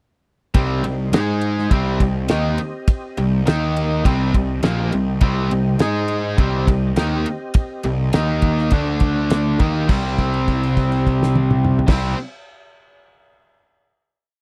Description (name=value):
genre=classic rock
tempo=103 BPM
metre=4/4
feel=straight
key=C minor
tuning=A4 = 439 Hz
part: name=biting overdriven guitar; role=riff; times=0.5-12.2 s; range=Bb2 to Ab4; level=-26 LUFS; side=equal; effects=none
part: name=crunchy overdriven guitar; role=riff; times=0.5-12.2 s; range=Bb2 to Ab4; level=-26 LUFS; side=equal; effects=none
part: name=fuzz picked electric bass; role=bass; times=0.5-12.1 s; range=Bb1 to Ab2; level=-24 LUFS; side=equal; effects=overdrive
part: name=damped 70s drum kit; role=drums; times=0.5-12.0 s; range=crash cymbal, kick drum, ride cymbal, snare drum, toms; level=-20 LUFS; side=equal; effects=none
part: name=tonewheel organ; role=sustained chords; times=0.6-12.2 s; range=G3 to Eb5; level=-35 LUFS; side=equal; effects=none
room=little or no reverb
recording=dry, close 1970s-style studio recording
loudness=-19 LUFS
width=mono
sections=0.5-9.9 riff; 9.9-12.2 final chord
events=held note 9.9-11.9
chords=0.5 Cm; 1.1 Ab5; 1.7 Cm; 3.5 Eb5; 4.1 Cm; 5.8 Ab5; 6.4 Cm; 8.1 Eb5; 8.7 D5; 9.6 Eb5; 9.9 C